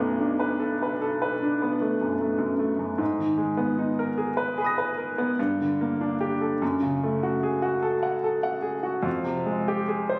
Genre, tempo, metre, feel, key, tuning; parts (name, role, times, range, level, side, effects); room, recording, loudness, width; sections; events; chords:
classical, impressionist solo piano; 47-52 BPM (dotted quarters); 9/8; rubato; B minor, G# dorian from 3.0 s; A4 = 440 Hz
warm concert grand piano; solo; 0.0-10.2 s; B1 to A#6; -26 LUFS; equal
moderate recital hall reverb, RT60 1.4 s; recorded on a phone in the room, studio reverb; -26 LUFS; mono
0.0-10.2 A section
0.0 Bm7; 3.0 G#madd9; 5.4 Gmadd9; 6.6 F#madd9; 9.1 Fmadd9